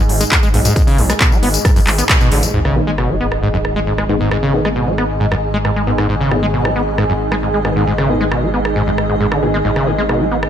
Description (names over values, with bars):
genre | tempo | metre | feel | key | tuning
driving peak-time techno | 135 BPM | 4/4 | straight | G# minor | A4 = 439 Hz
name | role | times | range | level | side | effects
overdriven acid bass | riff | 0.0-10.4 s | G#1 to B3 | -18 LUFS | equal | lush chorus, sidechain pumping, ping-pong delay
swarming drone | drone | 0.0-10.5 s | G#2 | -24 LUFS | right 2 dB | built-in reverb, phaser, sidechain pumping
granular cloud pad | texture | 0.0-10.5 s | G#4 to G#5 | -22 LUFS | right 1 dB | built-in reverb, sidechain pumping
gritty driven synth bass | bass | 0.1-10.5 s | G#1 to B1 | -21 LUFS | equal | sidechain pumping
techno drum kit | drums | 0.1-10.5 s | handclaps, hi-hat, rim click, tambourine | -19 LUFS | equal | studio reverb
electronic kick drum | drums | 0.3-2.2 s | none | -13 LUFS | equal | studio reverb
sub drop | sound effects | 2.5-4.3 s | none | -24 LUFS | equal | none
supersaw stab | stabs | 2.8-10.0 s | D#3 to G#4 | -22 LUFS | left 2 dB | sidechain pumping, low-pass filter, ping-pong delay
room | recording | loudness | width
light reverb | none | -13 LUFS | side -9 dB against mid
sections
0.0-2.5 A section; 2.5-10.5 B section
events
band accent 2.1; impact 2.5-4.3; filter sweep on supersaw synth 2.5-10.5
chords
0.0 G#m